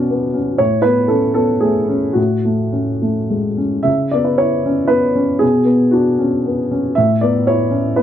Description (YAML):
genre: neoclassical minimalist piano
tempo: 104-122 BPM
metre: 3/4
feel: rubato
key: unclear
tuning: A4 = 440 Hz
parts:
  - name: warm upright piano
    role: solo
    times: 0.0-8.0 s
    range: A2 to E5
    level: -13 LUFS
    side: equal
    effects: none
room: light reverb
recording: worn, warbling old tape, cassette tape, warbly pitch drift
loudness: -13 LUFS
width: side -10 dB against mid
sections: 0.0-3.9 A section; 3.9-8.0 A section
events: none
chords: 0.0 Bmadd9; 0.6 Aadd9; 2.2 F#m/A; 3.9 C#m7; 5.4 Bmadd9; 7.0 Aadd9